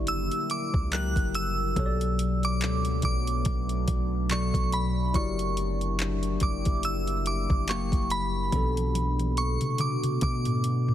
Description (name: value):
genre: contemporary R&B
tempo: 71 BPM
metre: 4/4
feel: swing 58% on 16ths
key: B minor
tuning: A4 = 438 Hz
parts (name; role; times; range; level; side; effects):
- glassy synth bell; melody; 0.0-10.9 s; B5 to F#6; -32 LUFS; right 2 dB; chorus, tape echo
- tine electric piano; accompaniment; 0.0-10.9 s; B2 to D5; -32 LUFS; left 4 dB; phaser
- deep dark ambient pad; sustained chords; 0.0-10.9 s; D3 to G4; -34 LUFS; equal; chorus, built-in reverb
- long sustained 808-style bass; bass; 0.0-10.9 s; F#1 to B2; -29 LUFS; equal; none
- smooth R&B drum kit; drums; 0.1-10.9 s; handclaps, hi-hat, kick drum, toms; -29 LUFS; equal; none
room: digital ambience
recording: heavily compressed radio sound, multiband compression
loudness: -25 LUFS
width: side -11 dB against mid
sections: 0.0-10.9 A section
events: drum fill 8.5-10.9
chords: 0.0 F#7b9b13; 0.9 F#7b9; 1.8 Bm7; 5.1 F#7b9b13; 7.7 F#7b9; 8.5 Bm7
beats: 0.07 0.92 | 1.76 2.61 3.45 4.30 | 5.14 5.99 6.83 7.68 | 8.52 9.37 10.21